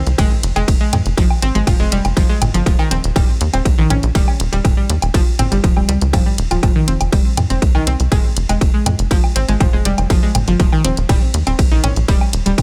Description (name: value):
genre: melodic techno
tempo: 121 BPM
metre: 4/4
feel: straight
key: F minor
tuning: A4 = 445 Hz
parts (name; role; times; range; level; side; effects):
- analog pluck; arpeggios; 0.0-12.5 s; Eb3 to Db4; -23 LUFS; equal; chorus, sidechain pumping, digital delay
- tight sequencer bass; bass; 0.0-12.6 s; Eb1 to F2; -20 LUFS; equal; sidechain pumping
- house drum kit; drums; 0.1-12.6 s; hi-hat, ride cymbal, toms, woodblock; -25 LUFS; equal; overdrive, sidechain pumping on hats, sidechain pumping on toms, sidechain pumping on perc, sidechain pumping on cymbals
- electronic kick drum; drums; 0.2-12.6 s; none; -17 LUFS; equal; overdrive
room: little or no reverb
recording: none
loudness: -15 LUFS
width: mono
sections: 0.0-12.6 A section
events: none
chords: 0.0 Fm; 2.7 Eb; 6.6 Fm; 10.6 Eb